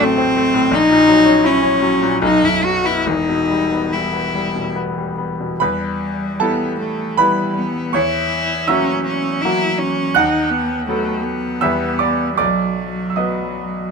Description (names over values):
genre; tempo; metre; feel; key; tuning
classical, romantic duo for cello and grand piano; 69-85 BPM; 3/4; rubato; E minor; A4 = 439 Hz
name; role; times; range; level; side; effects
clear cello; melody; 0.0-13.9 s; F#3 to F#4; -18 LUFS; left 1 dB; none
bright grand piano; accompaniment; 0.0-13.9 s; E1 to F#6; -18 LUFS; equal; none
room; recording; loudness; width
little or no reverb; close, detailed microphones; -15 LUFS; side -5 dB against mid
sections
0.0-5.6 A section; 5.6-13.9 B section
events
none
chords
0.0 F#dim/A; 0.7 F#7/A#; 2.2 B5; 3.1 Em; 7.9 F#7/E; 10.1 B7/D#; 11.6 Em; 12.4 B